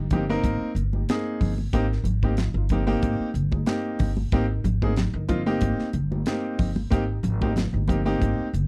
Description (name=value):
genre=electric jazz fusion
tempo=93 BPM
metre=4/4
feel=swing 54% on 16ths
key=Ab major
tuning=A4 = 440 Hz
part: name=clear grand piano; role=accompaniment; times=0.0-8.5 s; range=Bb3 to Bb4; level=-29 LUFS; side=equal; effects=none
part: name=upright bass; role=bass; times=0.0-8.7 s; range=G1 to Ab1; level=-28 LUFS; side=equal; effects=none
part: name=tight funk drum kit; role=drums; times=0.1-8.7 s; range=hi-hat, kick drum, snare drum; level=-28 LUFS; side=equal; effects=none
part: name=congas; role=percussion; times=0.1-8.4 s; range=none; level=-34 LUFS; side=equal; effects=none
room=little or no reverb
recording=dry, close 1970s-style studio recording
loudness=-25 LUFS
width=mono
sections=0.0-8.7 A section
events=none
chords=0.0 Abmaj9